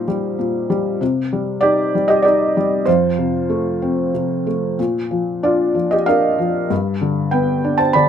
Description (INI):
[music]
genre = classical, lyrical solo piano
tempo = 96 BPM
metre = 3/4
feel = rubato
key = Bb major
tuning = A4 = 440 Hz
[part]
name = felt-muted upright piano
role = solo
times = 0.0-8.1 s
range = F2 to B5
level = -15 LUFS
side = equal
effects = none
[sound]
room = light reverb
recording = close, detailed microphones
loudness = -16 LUFS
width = side -8 dB against mid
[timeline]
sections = 0.0-8.1 A section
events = none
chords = 0.0 Eb6/Bb; 1.0 Cm; 2.9 F; 4.8 Bb; 6.7 G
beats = 0.39 | 1.01 1.63 2.25 | 2.87 3.50 4.14 | 4.79 5.44 6.08 | 6.71 7.33 7.95